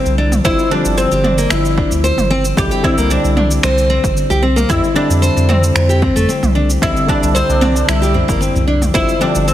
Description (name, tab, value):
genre	organic downtempo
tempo	113 BPM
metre	4/4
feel	straight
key	C major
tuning	A4 = 440 Hz
part	oud	melody	0.0-9.5 s	C4 to G4	-18 LUFS	equal	ping-pong delay
part	tine electric piano	accompaniment	0.0-9.5 s	D3 to F4	-20 LUFS	left 4 dB	sidechain pumping
part	nylon-string guitar	arpeggios	0.0-9.3 s	A3 to C5	-18 LUFS	equal	ping-pong delay
part	warm sub bass	bass	0.1-9.5 s	G1 to F2	-16 LUFS	equal	sidechain pumping
part	deep house drum kit	drums	0.1-9.5 s	finger snaps, shaker, toms	-21 LUFS	right 1 dB	overdrive, studio reverb
part	electronic kick drum	drums	0.4-9.1 s	none	-19 LUFS	equal	overdrive, studio reverb
part	tabla	percussion	7.1-9.5 s	none	-26 LUFS	left 2 dB	none
room	light reverb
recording	heavily compressed radio sound, multiband compression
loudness	-12 LUFS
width	side -12 dB against mid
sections	0.0-9.5 A section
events	none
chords	0.4 G7(no3); 2.6 C; 4.7 Fmaj7sus2; 6.8 C; 8.9 G7(no3)